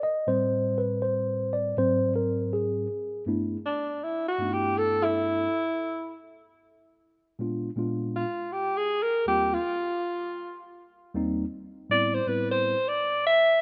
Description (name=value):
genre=hip hop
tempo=80 BPM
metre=4/4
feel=swing 62% on 16ths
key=G major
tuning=A4 = 439 Hz
part: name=mellow tine electric piano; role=accompaniment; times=0.0-12.7 s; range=Eb2 to Eb5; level=-30 LUFS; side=equal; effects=none
part: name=breathy alto saxophone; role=melody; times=3.7-13.6 s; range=D4 to E5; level=-27 LUFS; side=equal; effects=none
room=moderate lush hall reverb, RT60 2.3 s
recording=rough home demo mix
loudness=-27 LUFS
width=mono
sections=0.0-3.3 A section; 3.3-13.6 A section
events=tine electric piano solo 0.0-3.3; alto saxophone solo 3.3-13.6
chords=0.3 Am7; 1.8 Ab7; 3.3 G69; 6.3 Bb7b9; 9.3 Eb69; 12.3 Am7